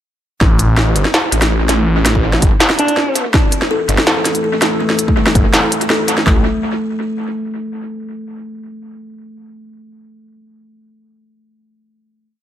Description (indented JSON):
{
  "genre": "half-time drum and bass",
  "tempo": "164 BPM",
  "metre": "4/4",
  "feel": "half-time",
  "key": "unclear",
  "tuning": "A4 = 440 Hz",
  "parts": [
    { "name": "phased detuned saw bass", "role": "bass", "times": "0.4-6.4 s", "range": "G1 to A1", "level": "-14 LUFS", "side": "equal", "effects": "phaser" },
    { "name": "industrial drum kit", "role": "drums", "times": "0.4-6.4 s", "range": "handclaps, kick drum, toms", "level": "-14 LUFS", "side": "equal", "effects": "none" },
    { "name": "industrial drum kit", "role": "drums", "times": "0.4-6.2 s", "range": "hi-hat, snare drum", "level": "-15 LUFS", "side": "equal", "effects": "analog delay" },
    { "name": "breathy alto saxophone", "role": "melody", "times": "2.8-3.3 s", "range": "D4", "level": "-20 LUFS", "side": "right 1 dB", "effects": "vintage 12-bit sampler grit, analog delay" },
    { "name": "dark analog pad", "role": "sustained chords", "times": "3.3-6.4 s", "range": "E3 to E5", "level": "-24 LUFS", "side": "equal", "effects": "chorus, vintage 12-bit sampler grit, sidechain pumping" },
    { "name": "buzzing kalimba", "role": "arpeggios", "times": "3.3-6.4 s", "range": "G3 to A4", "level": "-21 LUFS", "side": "left 1 dB", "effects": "analog delay" }
  ],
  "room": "light reverb",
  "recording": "echo-heavy mix, lossy compression artefacts",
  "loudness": "-12 LUFS",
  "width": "side -11 dB against mid",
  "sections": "0.4-6.3 drop; 6.3-7.7 final chord",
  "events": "drop 0.4-6.3; band accent 5.9",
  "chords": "0.4 A5",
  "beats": "| 0.41 0.78 1.14 1.51 | 1.88 2.24 2.61 2.97 | 3.34 3.71 4.07 4.44 | 4.80 5.17 5.53 5.90 | 6.27"
}